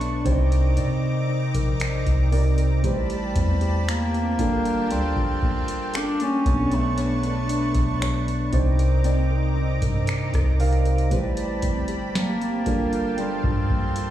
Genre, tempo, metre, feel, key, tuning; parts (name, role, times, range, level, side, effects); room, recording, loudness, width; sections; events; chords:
contemporary R&B; 58 BPM; 4/4; straight; A4 = 440 Hz
warm bass clarinet; melody; 0.0-14.1 s; G3 to D4; -27 LUFS; equal; tape echo
mellow tine electric piano; accompaniment; 0.0-14.1 s; B2 to F5; -26 LUFS; right 2 dB; wide subtle chorus
lush unison pad; sustained chords; 0.0-14.1 s; C4 to D6; -32 LUFS; equal; chorus
nylon-string guitar; arpeggios; 0.0-14.1 s; G3 to D5; -33 LUFS; left 7 dB; tape echo
soft 808-style bass; bass; 0.0-14.1 s; G1 to C3; -24 LUFS; equal
booming analog drum machine; drums; 0.0-14.1 s; finger snaps, hi-hat, kick drum, rim click, snare drum; -26 LUFS; equal
digital ambience; played on a big sound system in a bare room, stone room reverb, studio reverb; -20 LUFS; side -12 dB against mid
0.0-14.1 A section
0.3 Cm9; 2.8 Am9; 4.4 Gm9; 6.5 Bm9; 8.5 Cm9; 11.1 Am9; 12.7 Gm9